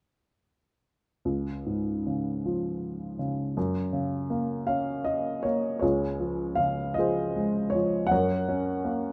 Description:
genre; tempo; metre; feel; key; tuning
classical, lyrical solo piano; 53 BPM (dotted quarters); 6/8; uneven beats, rubato; Db major; A4 = 441 Hz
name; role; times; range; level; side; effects
dark upright piano; solo; 1.3-9.1 s; Db2 to Gb5; -28 LUFS; equal; none
room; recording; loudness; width
light reverb; close, detailed microphones; -29 LUFS; mono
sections
1.2-5.8 A section; 5.8-9.1 B section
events
none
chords
1.2 Db; 3.6 Gb; 5.8 Dbmaj7; 8.1 Gb

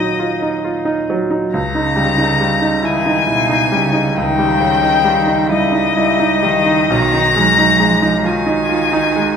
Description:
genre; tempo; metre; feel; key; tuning
classical, slow romantic movement for piano trio; 45 BPM (dotted quarters); 12/8; rubato; unclear; A4 = 440 Hz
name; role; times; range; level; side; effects
warm violin; melody; 0.0-9.4 s; Eb5 to Bb5; -16 LUFS; left 6 dB; none
clear cello; second line; 0.0-9.4 s; Cb3 to G3; -20 LUFS; right 5 dB; none
bright concert grand piano; accompaniment; 0.0-9.4 s; Cb2 to F4; -16 LUFS; right 1 dB; none
room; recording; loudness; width
wet recital hall reverb, RT60 1.4 s; recorded in a church or concert hall; -12 LUFS; side -6 dB against mid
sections
0.0-9.4 A section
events
none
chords
0.0 Ebm; 1.5 Eb7/Db; 6.9 Abm/Cb

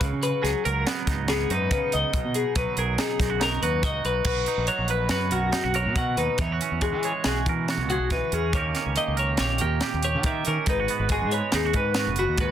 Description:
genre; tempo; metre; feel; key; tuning
math rock and midwest emo; 140 BPM; 5/4; straight; B major; A4 = 440 Hz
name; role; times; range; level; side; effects
twangy electric guitar; accompaniment; 0.0-12.5 s; F#2 to B4; -28 LUFS; right 9 dB; none
growling fingered electric bass; bass; 0.0-12.5 s; F#1 to E3; -28 LUFS; equal; overdrive
crisp fusion drum kit; drums; 0.0-12.5 s; crash cymbal, hi-hat, kick drum, snare drum; -28 LUFS; right 1 dB; none
twelve-string electric guitar; arpeggios; 0.2-12.5 s; F#4 to F#5; -27 LUFS; left 4 dB; none
room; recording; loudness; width
light reverb; dense, heavily limited modern master; -22 LUFS; side -10 dB against mid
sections
0.0-4.3 A section; 4.3-12.5 B section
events
none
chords
0.0 C#13sus4; 2.1 B6; 4.3 Bmaj9; 6.4 E69; 8.5 D#7; 10.7 G#m7

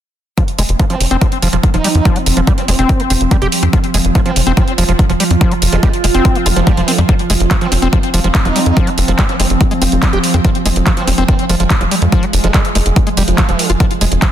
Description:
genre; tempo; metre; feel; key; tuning
psychedelic trance; 143 BPM; 4/4; straight; F minor; A4 = 440 Hz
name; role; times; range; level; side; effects
evolving wavetable pad; sustained chords; 1.1-14.3 s; F3 to F4; -19 LUFS; right 3 dB; chorus, built-in reverb, sidechain pumping
overdriven acid bass; riff; 0.4-14.3 s; F3 to G4; -19 LUFS; left 1 dB; distortion, auto-pan, sidechain pumping, ping-pong delay
drum and bass drum kit; drums; 0.4-14.3 s; handclaps, hi-hat; -19 LUFS; right 1 dB; none
electronic kick drum; drums; 0.4-14.3 s; none; -12 LUFS; equal; none
tight sequencer bass; bass; 0.6-14.2 s; F1 to F2; -14 LUFS; equal; none
formant-sweep wobble bass; second line; 0.9-13.7 s; F3 to Eb4; -25 LUFS; right 6 dB; chorus, sidechain pumping, high-pass filter, digital delay
zap; sound effects; 6.5-6.6 s; none; -25 LUFS; equal; none
room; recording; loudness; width
light reverb, digital ambience; dense, heavily limited modern master; -10 LUFS; side -10 dB against mid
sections
0.4-14.3 A section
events
none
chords
0.4 F5

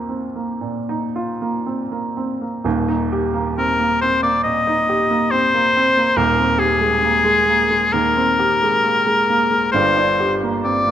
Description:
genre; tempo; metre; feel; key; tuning
classical, impressionist duo for oboe and grand piano; 55-71 BPM; 4/4; rubato; Eb major; A4 = 441 Hz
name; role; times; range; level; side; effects
clear baby grand piano; accompaniment; 0.0-10.9 s; Eb1 to G5; -20 LUFS; right 2 dB; none
bright oboe; melody; 3.6-10.9 s; Ab4 to Eb5; -16 LUFS; left 2 dB; none
room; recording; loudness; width
moderate scoring stage reverb, RT60 1.7 s; close, detailed microphones; -15 LUFS; side -10 dB against mid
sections
0.0-2.6 A section; 2.6-10.9 A section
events
none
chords
0.0 Ebadd9; 2.6 Eb; 6.2 Ebadd11; 9.7 Gm

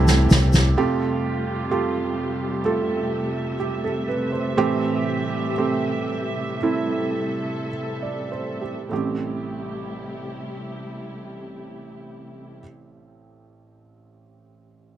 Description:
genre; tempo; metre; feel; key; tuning
pop ballad; 50-64 BPM; 4/4; straight; A minor; A4 = 440 Hz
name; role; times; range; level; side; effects
felt-muted upright piano; accompaniment; 0.0-15.0 s; A1 to D5; -24 LUFS; right 4 dB; none
dark studio string section; sustained chords; 0.0-12.6 s; C3 to E5; -30 LUFS; left 1 dB; none
fingered electric bass; bass; 0.0-0.7 s; C2; -17 LUFS; equal; none
snare drum; drums; 0.1-0.8 s; none; -18 LUFS; equal; none
tube shaker; percussion; 0.1-0.8 s; none; -35 LUFS; left 8 dB; none
room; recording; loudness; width
little or no reverb; dark, warm production; -21 LUFS; side -11 dB against mid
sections
0.8-8.9 A section; 8.9-13.7 B section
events
drum fill 0.0-0.8; slowing down 0.8-8.9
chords
0.0 Am7; 0.8 Fadd9; 4.6 Am7

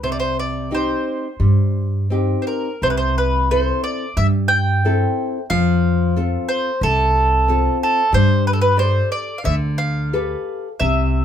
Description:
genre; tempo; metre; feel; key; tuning
fado-style ballad; 89 BPM; 4/4; rubato; C major; A4 = 440 Hz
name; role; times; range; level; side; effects
mandolin; melody; 0.0-11.2 s; A4 to G5; -20 LUFS; right 1 dB; none
nylon-string guitar; accompaniment; 0.0-11.2 s; C3 to D5; -23 LUFS; left 2 dB; none
upright bass; bass; 0.0-11.2 s; C2 to G2; -19 LUFS; equal; none
room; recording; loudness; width
moderate small room reverb, RT60 0.5 s; band playing live in one room; -16 LUFS; side -9 dB against mid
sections
0.0-2.8 A section; 2.8-11.2 B section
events
none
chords
0.0 Cm; 2.8 C6; 5.5 F; 8.1 Gadd9

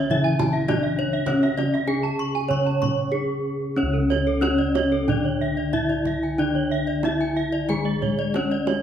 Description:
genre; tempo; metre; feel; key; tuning
Balinese gamelan; 92-105 BPM; 4/4; straight; C# pelog; A4 = 439 Hz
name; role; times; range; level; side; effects
gamelan-type bronze metallophone; melody; 0.0-8.8 s; C#4 to C#5; -24 LUFS; equal; none
gamelan-type bronze metallophone; accompaniment; 0.0-8.8 s; C#3 to C#4; -30 LUFS; left 2 dB; none
gamelan-type bronze metallophone; arpeggios; 0.0-8.8 s; A4 to A5; -29 LUFS; right 5 dB; none
gamelan-type bronze metallophone; arpeggios; 0.1-8.7 s; A4 to C#6; -30 LUFS; left 4 dB; none
gamelan-type bossed gongs; bass; 0.1-8.8 s; C#2 to D4+35c; -27 LUFS; left 1 dB; none
kendang; percussion; 0.1-8.8 s; none; -31 LUFS; right 4 dB; none
room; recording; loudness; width
wet recital hall reverb, RT60 1.5 s; lossy compression artefacts; -20 LUFS; side -9 dB against mid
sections
0.0-3.8 A section; 3.8-8.8 B section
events
none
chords
none

